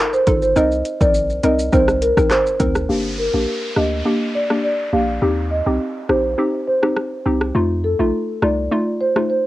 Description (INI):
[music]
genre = dancehall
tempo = 103 BPM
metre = 4/4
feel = straight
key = G minor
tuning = A4 = 440 Hz
[part]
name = hollow square pluck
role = accompaniment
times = 0.0-9.3 s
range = A3 to Bb4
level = -20 LUFS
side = left 1 dB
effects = chorus, low-pass filter, cassette tape
[part]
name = marimba with soft mallets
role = melody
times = 0.1-9.4 s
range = A4 to F5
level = -20 LUFS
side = equal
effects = low-pass filter, cassette tape
[part]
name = deep house drum kit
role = drums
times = 0.1-9.3 s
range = handclaps, hi-hat, kick drum, rim click, shaker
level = -19 LUFS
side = equal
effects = overdrive, vintage 12-bit sampler grit, cassette tape
[part]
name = punchy sub bass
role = bass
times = 0.3-8.7 s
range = G1 to F2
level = -23 LUFS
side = equal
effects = none
[part]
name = downlifter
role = sound effects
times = 2.9-7.5 s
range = none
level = -32 LUFS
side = equal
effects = none
[sound]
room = light reverb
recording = home recording on cassette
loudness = -16 LUFS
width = side -16 dB against mid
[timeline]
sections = 0.0-2.9 A section; 2.9-9.5 B section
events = filter sweep 2.9-9.5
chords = 0.0 F7; 0.6 Cm7; 2.9 Gm; 5.2 Eb6; 7.5 F7